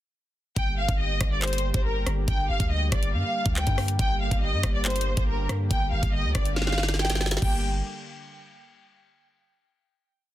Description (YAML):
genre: hip hop, drill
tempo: 140 BPM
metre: 4/4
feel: half-time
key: G minor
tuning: A4 = 440 Hz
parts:
  - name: rich studio violin section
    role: melody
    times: 0.6-7.6 s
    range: Bb4 to G5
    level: -30 LUFS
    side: left 1 dB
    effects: low-pass filter, ping-pong delay
  - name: warm analog pad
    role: sustained chords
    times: 0.6-7.6 s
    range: D3 to G4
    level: -36 LUFS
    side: equal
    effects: chorus
  - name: long sustained 808-style bass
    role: bass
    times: 0.6-7.8 s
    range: G1 to G2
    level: -27 LUFS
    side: equal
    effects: none
  - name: drill drum kit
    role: drums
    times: 0.6-7.5 s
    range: crash cymbal, handclaps, hi-hat, kick drum, rim click, snare drum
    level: -27 LUFS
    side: equal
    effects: overdrive
room: digital ambience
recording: dense, heavily limited modern master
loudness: -23 LUFS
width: side -14 dB against mid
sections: 0.6-7.4 hook; 7.4-9.1 final chord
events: drum fill 6.6-7.4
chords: 0.6 Gm; 7.4 N.C.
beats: | 0.56 0.99 1.42 1.85 | 2.28 2.71 3.13 3.56 | 3.99 4.42 4.85 5.28 | 5.71 6.13 6.56 6.99 | 7.42